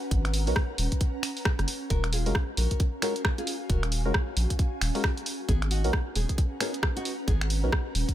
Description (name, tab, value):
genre	UK garage, two-step garage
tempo	134 BPM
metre	4/4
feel	swing 61% on 16ths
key	unclear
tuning	A4 = 440 Hz
part	ethereal airy pad	texture	0.0-8.1 s	Db4 to Bb5	-37 LUFS	right 1 dB	ensemble chorus, built-in reverb, sidechain pumping
part	soft dub sub bass	bass	0.1-8.0 s	Eb1 to Cb2	-27 LUFS	equal	none
part	electronic kick drum	drums	0.1-8.1 s	none	-26 LUFS	equal	small room ambience
part	punchy analog drum machine	drums	0.1-8.1 s	finger snaps, hi-hat, rim click	-31 LUFS	equal	small room ambience
part	percussive organ stab	stabs	0.5-7.7 s	Ab3 to Bb4	-35 LUFS	equal	wide subtle chorus, ping-pong delay
part	nylon-string guitar	melody	1.9-7.4 s	Cb4 to Bb4	-36 LUFS	left 3 dB	tape echo
room	little or no reverb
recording	none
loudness	-25 LUFS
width	side -12 dB against mid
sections	0.0-8.1 A section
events	none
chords	0.0 Abm11; 1.9 Ebm11; 5.5 Abm11